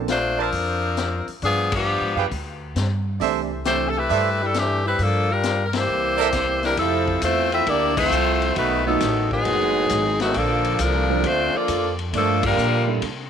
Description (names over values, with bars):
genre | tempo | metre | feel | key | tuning
jazz, big band swing | 134 BPM | 4/4 | swing 68% on 8ths | C major | A4 = 441 Hz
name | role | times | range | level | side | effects
warm concert grand piano | accompaniment | 0.0-0.1, 3.2-3.9, 8.9-13.0 s | E3 to A4 | -27 LUFS | right 13 dB | none
upright bass | bass | 0.0-13.3 s | F#1 to C3 | -26 LUFS | equal | none
bright saxophone section | melody | 0.1-12.9 s | D#3 to E5 | -21 LUFS | left 3 dB | none
vintage drum kit | drums | 0.1-13.2 s | crash cymbal, hi-hat, kick drum, ride cymbal, snare drum | -30 LUFS | left 5 dB | none
clear trumpet section | stabs | 0.4-6.3 s | Ab4 to A5 | -26 LUFS | right 13 dB | none
warm trombone section | second line | 5.7-12.9 s | A2 to A4 | -26 LUFS | right 13 dB | none
room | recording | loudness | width
light reverb | 1960s-style stereo | -19 LUFS | side -8 dB against mid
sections
0.0-6.8 A section; 6.8-13.3 B section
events
band accent 1.6, 5.7, 7.9, 12.3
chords
0.0 Bbadd9; 1.4 G7b9; 3.2 C69; 5.0 Gm7; 5.9 C7; 6.8 Fmaj7; 8.6 B7; 10.3 Bbmaj7; 12.1 Gm7